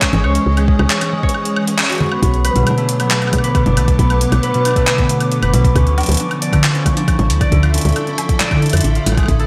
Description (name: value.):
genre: IDM.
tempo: 136 BPM.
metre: 4/4.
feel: straight.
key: B dorian.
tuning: A4 = 440 Hz.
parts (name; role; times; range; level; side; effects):
hollow soft pad; sustained chords; 0.0-9.5 s; D3 to D6; -24 LUFS; equal; ensemble chorus.
concert harp; arpeggios; 0.0-9.5 s; B2 to D5; -20 LUFS; equal; delay.
electronic kick drum; drums; 0.0-9.4 s; none; -19 LUFS; equal; studio reverb.
jungle sampler-style drum kit; drums; 0.0-9.5 s; congas, handclaps, hi-hat, woodblock; -22 LUFS; equal; overdrive, studio reverb, gated reverb, delay.
woody FM bass; bass; 0.1-9.5 s; F#1 to F2; -18 LUFS; equal; none.
room: moderate plate reverb, RT60 1.1 s.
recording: bright 1980s-style digital production.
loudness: -15 LUFS.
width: mono.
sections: 0.0-2.2 A section; 2.2-9.5 A section.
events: kick drops out 1.3-2.2; band accent 1.8.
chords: 0.0 C#m; 2.2 Bm; 5.8 Dmadd9.